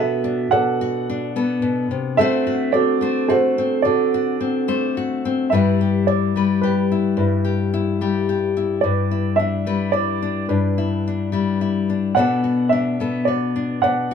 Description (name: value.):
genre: acoustic folk-pop ballad.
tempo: 108 BPM.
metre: 3/4.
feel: straight.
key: G major.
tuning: A4 = 439 Hz.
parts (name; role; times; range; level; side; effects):
dark upright piano; melody; 0.0-14.1 s; D4 to F#5; -21 LUFS; right 4 dB; none.
nylon-string guitar; accompaniment; 0.0-14.1 s; G2 to C5; -20 LUFS; left 4 dB; none.
vibraphone with soft mallets; arpeggios; 0.0-4.8 s; F#4 to A4; -25 LUFS; right 12 dB; none.
room: moderate studio reverb, RT60 0.5 s.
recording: small room ambience.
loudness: -17 LUFS.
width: side -7 dB against mid.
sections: 0.0-5.5 A section; 5.5-14.1 A section.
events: none.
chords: 0.0 Bm7; 2.2 D7; 5.5 G6; 8.8 Em7/G; 12.2 Bm7.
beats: | 0.51 1.06 1.62 | 2.17 2.73 3.29 | 3.84 4.40 4.95 | 5.51 6.06 6.62 | 7.17 7.73 8.28 | 8.84 9.39 9.95 | 10.50 11.06 11.61 | 12.16 12.72 13.27 | 13.83.